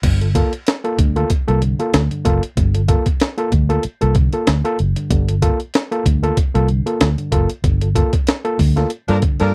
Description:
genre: funk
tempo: 95 BPM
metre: 4/4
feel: swing 56% on 16ths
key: G minor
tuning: A4 = 440 Hz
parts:
  - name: overdriven reed electric piano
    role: stabs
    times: 0.0-9.5 s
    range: G2 to A4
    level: -23 LUFS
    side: equal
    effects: none
  - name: vintage muted fingered electric bass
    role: bass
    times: 0.0-9.5 s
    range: F#1 to G2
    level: -19 LUFS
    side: equal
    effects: none
  - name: breakbeat sampler-style drum kit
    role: drums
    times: 0.0-9.5 s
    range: crash cymbal, hi-hat, kick drum, snare drum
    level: -20 LUFS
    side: equal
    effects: none
  - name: warm horn section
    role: second line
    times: 9.1-9.5 s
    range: F3 to Bb4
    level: -23 LUFS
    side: equal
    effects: none
room: little or no reverb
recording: dry, close 1970s-style studio recording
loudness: -17 LUFS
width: mono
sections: 0.0-9.5 A section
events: band accent 7.6-9.5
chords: 0.0 Gm9

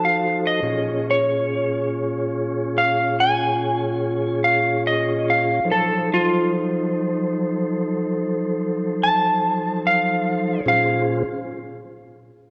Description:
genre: blues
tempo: 48 BPM (dotted quarters)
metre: 12/8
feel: straight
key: Bb minor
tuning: A4 = 440 Hz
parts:
  - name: electric slide guitar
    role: melody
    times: 0.0-11.1 s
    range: F4 to A5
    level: -23 LUFS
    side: equal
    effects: none
  - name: mellow tonewheel organ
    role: sustained chords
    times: 0.0-11.2 s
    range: Bb2 to Db5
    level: -25 LUFS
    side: equal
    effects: slow rotary speaker
room: wet lush hall reverb, RT60 2.2 s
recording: dreamy mix soaked in reverb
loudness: -21 LUFS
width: mono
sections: 0.0-10.6 A section; 10.6-12.5 B section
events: electric slide guitar solo 0.0-10.6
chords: 0.0 F7b9; 0.6 Bbm7; 5.6 F7b9; 10.6 Bbm7

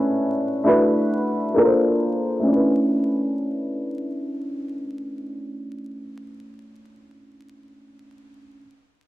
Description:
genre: hip hop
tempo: 66 BPM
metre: 4/4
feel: swing 59% on 16ths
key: B minor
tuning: A4 = 438 Hz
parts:
  - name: warm upright piano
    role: accompaniment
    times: 0.0-8.6 s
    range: A3 to C#5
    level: -20 LUFS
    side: equal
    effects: cassette tape, low-pass filter
room: light reverb, studio reverb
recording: dry, gritty hardware recording, vinyl crackle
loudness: -19 LUFS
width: side -15 dB against mid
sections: 0.0-2.5 A section; 2.5-6.1 B section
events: filter sweep on upright piano 0.0-2.5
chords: 0.0 Bm11; 0.7 E9sus4; 1.6 A#maj9; 2.5 Bm11

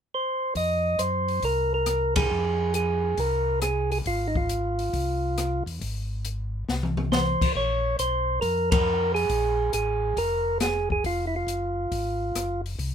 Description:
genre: soul jazz organ trio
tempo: 138 BPM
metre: 4/4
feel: swing 68% on 8ths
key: F minor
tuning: A4 = 440 Hz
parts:
  - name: percussive tonewheel organ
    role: melody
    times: 0.1-12.6 s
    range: Eb4 to Eb5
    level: -25 LUFS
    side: right 2 dB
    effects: stopped rotary speaker
  - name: mellow tonewheel organ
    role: bass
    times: 0.6-12.9 s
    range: F1 to Gb2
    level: -29 LUFS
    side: left 1 dB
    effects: slow rotary speaker
  - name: open jazz drum kit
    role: drums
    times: 0.6-12.9 s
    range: crash cymbal, hi-hat, kick drum, ride cymbal, rim click, snare drum, toms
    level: -29 LUFS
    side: left 2 dB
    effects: none
room: light reverb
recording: minimal, uncompressed stereo recording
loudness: -23 LUFS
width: side -8 dB against mid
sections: 0.6-12.9 A section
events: band accent 2.1, 8.6; drum fill 6.7-7.1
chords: 0.0 N.C.; 0.6 Fm; 7.6 Bbm9; 11.0 Fm

